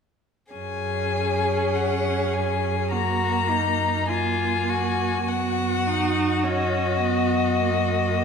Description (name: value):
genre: classical, slow romantic movement for string quartet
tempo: 51 BPM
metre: 4/4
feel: rubato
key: F# major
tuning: A4 = 440 Hz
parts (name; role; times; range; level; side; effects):
- rich violin; melody; 0.5-8.2 s; D#5 to A#5; -26 LUFS; left 7 dB; none
- rich violin; second line; 0.5-8.2 s; D#4 to G#4; -27 LUFS; left 3 dB; none
- rich viola; accompaniment; 0.5-8.2 s; A#3 to D#4; -27 LUFS; right 4 dB; none
- rich cello; bass; 0.5-8.2 s; F#2; -28 LUFS; right 4 dB; none
room: wet scoring stage reverb, RT60 1.5 s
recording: minimal, uncompressed stereo recording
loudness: -21 LUFS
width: side -6 dB against mid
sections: 0.5-8.2 A section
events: none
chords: 0.5 F#; 5.3 G#m7/F# (rootless)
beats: | 0.54 1.75 2.92 4.10 | 5.28 6.45 7.60